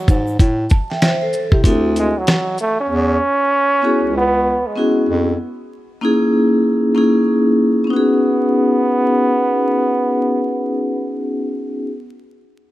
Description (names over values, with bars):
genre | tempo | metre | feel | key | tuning
hip hop, jazz-hop | 96 BPM | 4/4 | swing 62% on 16ths | B major | A4 = 441 Hz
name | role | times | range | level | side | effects
clear trombone | melody | 0.0-11.2 s | F#3 to C#4 | -18 LUFS | right 1 dB | analog delay
warm bass clarinet | bass | 0.1-5.4 s | C#2 to C3 | -19 LUFS | equal | none
dusty soul sampler-style drum kit | drums | 0.1-2.8 s | hi-hat, kick drum, shaker, snare drum | -14 LUFS | equal | none
vibraphone with medium mallets | accompaniment | 0.7-11.9 s | A#3 to A5 | -16 LUFS | left 1 dB | none
room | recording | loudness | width
moderate echo chamber reverb, RT60 2.2 s | vinyl crackle | -14 LUFS | side -15 dB against mid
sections
0.0-7.9 A section; 7.9-10.4 B section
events
none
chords
0.4 Am; 1.6 D9; 2.9 E6; 5.4 C#m69/A#; 7.9 B69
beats
| 0.40 1.02 1.65 2.27 | 2.90 3.52 4.15 4.78 | 5.40 6.03 6.65 7.28 | 7.90 8.53 9.15 9.78